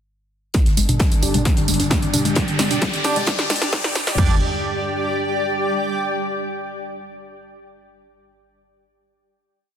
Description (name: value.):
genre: driving peak-time techno.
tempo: 132 BPM.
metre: 4/4.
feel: straight.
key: unclear.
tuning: A4 = 440 Hz.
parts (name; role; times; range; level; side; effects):
warbly dusty pluck; riff; 0.5-4.4 s; G3 to D4; -27 LUFS; left 1 dB; chorus, cassette tape, sidechain pumping, dub echo.
metallic inharmonic drone; drone; 0.8-4.2 s; G2 to D3; -28 LUFS; left 1 dB; chorus, built-in reverb, sidechain pumping.
swinging big-band drum kit; drums; 0.5-4.2 s; hi-hat, snare drum; -35 LUFS; left 3 dB; none.
techno drum kit; drums; 0.5-4.3 s; crash cymbal, kick drum, toms; -19 LUFS; equal; overdrive.
techno drum kit; drums; 0.5-4.2 s; hi-hat, snare drum, tambourine, toms; -23 LUFS; right 1 dB; overdrive, sidechain pumping on hats, sidechain pumping on perc, sidechain pumping on toms.
riser; sound effects; 1.5-4.2 s; none; -28 LUFS; left 2 dB; none.
granular cloud pad; texture; 1.9-6.0 s; G4 to G5; -24 LUFS; equal; built-in reverb, sidechain pumping.
growling 808-style bass; bass; 0.7-4.4 s; G1; -26 LUFS; equal; overdrive, sidechain pumping, low-pass filter.
sync-sweep polysynth; stabs; 1.2-4.4 s; D4 to D5; -28 LUFS; right 3 dB; chorus, sidechain pumping, dub echo.
room: light reverb.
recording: dense, heavily limited modern master, high-pass filter.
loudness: -17 LUFS.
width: side -9 dB against mid.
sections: 0.5-4.2 build; 4.2-6.0 final chord.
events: build-up 0.5-4.2; drum fill 0.5-4.2; filter sweep on synth arpeggio sound 0.5-4.2; filter sweep on analog polysynth 0.5-4.2; filter sweep 0.5-4.2; riser 1.5-4.2.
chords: 0.5 G5.